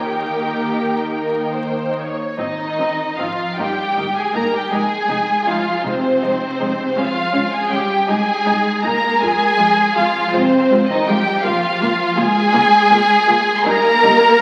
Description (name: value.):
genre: classical, slow romantic movement for string orchestra.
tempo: 47-56 BPM (dotted quarters).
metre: 6/8.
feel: rubato.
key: Ab major.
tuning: A4 = 440 Hz.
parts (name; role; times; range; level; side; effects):
warm symphonic violin section; melody; 0.0-14.4 s; C5 to C6; -22 LUFS; equal; none.
warm symphonic violin section; second line; 0.0-14.4 s; C4 to Db5; -20 LUFS; equal; none.
warm symphonic viola section; accompaniment; 0.0-14.1 s; G3 to F4; -26 LUFS; equal; none.
warm symphonic cello section; bass; 0.0-14.4 s; C3 to Bb3; -28 LUFS; equal; none.
warm symphonic double bass section; bass; 0.0-14.1 s; F1 to F2; -36 LUFS; equal; none.
room: wet scoring stage reverb, RT60 2.1 s.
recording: very old 78 rpm record, vinyl crackle.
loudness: -17 LUFS.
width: mono.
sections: 0.0-2.4 A section; 2.4-14.4 B section.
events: none.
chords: 0.0 Eb; 2.4 Ab; 3.6 Eb/G; 4.7 Fm7; 7.0 Db; 8.1 Ab/C; 9.2 Fm; 11.5 Bbm7/Db; 13.7 Eb7/Db.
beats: 1.15 | 2.39 3.58 | 4.72 5.85 | 6.97 8.10 | 9.22 10.35 | 11.45 12.54 | 13.65.